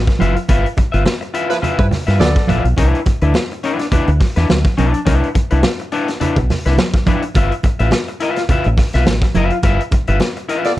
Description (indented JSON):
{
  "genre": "funk",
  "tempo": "105 BPM",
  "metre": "4/4",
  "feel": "swing 56% on 16ths",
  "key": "unclear",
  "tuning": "A4 = 440 Hz",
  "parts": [
    { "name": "fingered electric bass with an envelope filter", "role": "bass", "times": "0.0-10.2 s", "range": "F#1 to G2", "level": "-15 LUFS", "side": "equal", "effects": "none" },
    { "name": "electric guitar at the edge of break-up", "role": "accompaniment", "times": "0.1-10.7 s", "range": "D4 to E5", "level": "-20 LUFS", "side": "left 3 dB", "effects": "none" },
    { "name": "raw garage drum kit", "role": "drums", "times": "0.1-10.8 s", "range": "hi-hat, kick drum, snare drum", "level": "-17 LUFS", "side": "equal", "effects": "none" },
    { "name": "congas", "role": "percussion", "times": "0.2-10.8 s", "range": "none", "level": "-22 LUFS", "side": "right 3 dB", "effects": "none" },
    { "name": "warm horn section", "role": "second line", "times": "1.5-2.6, 10.7 s", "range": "F3 to D5", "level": "-20 LUFS", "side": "right 1 dB", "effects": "none" }
  ],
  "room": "studio ambience",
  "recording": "dark, warm production",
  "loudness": "-13 LUFS",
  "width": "side -15 dB against mid",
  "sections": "0.0-10.8 A section",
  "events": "band accent 0.5-2.8, 9.6-10.8",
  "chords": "0.0 G13; 2.8 Cmaj9 (rootless); 7.4 G13 (rootless)"
}